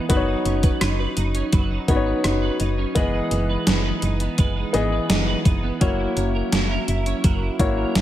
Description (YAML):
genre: 1980s-style pop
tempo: 84 BPM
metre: 4/4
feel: straight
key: unclear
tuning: A4 = 439 Hz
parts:
  - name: warm baby grand piano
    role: accompaniment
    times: 0.0-8.0 s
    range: E3 to D#5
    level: -24 LUFS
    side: left 2 dB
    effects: none
  - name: twelve-string electric guitar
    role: riff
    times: 0.0-8.0 s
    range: F#3 to B4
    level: -28 LUFS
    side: right 5 dB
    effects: ensemble chorus, ping-pong delay
  - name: solid FM bass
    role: bass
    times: 0.1-8.0 s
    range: F#1 to G#1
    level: -24 LUFS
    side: equal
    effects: none
  - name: gated 80s digital drum machine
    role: drums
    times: 0.1-8.0 s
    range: hi-hat, kick drum, rim click, snare drum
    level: -21 LUFS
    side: equal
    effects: gated reverb, gated reverb snare, overdrive
room: light reverb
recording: none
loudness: -19 LUFS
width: side -12 dB against mid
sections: 0.0-8.0 A section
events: none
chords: 0.1 Badd9/F#; 3.0 Emaj7/F#; 5.8 F#7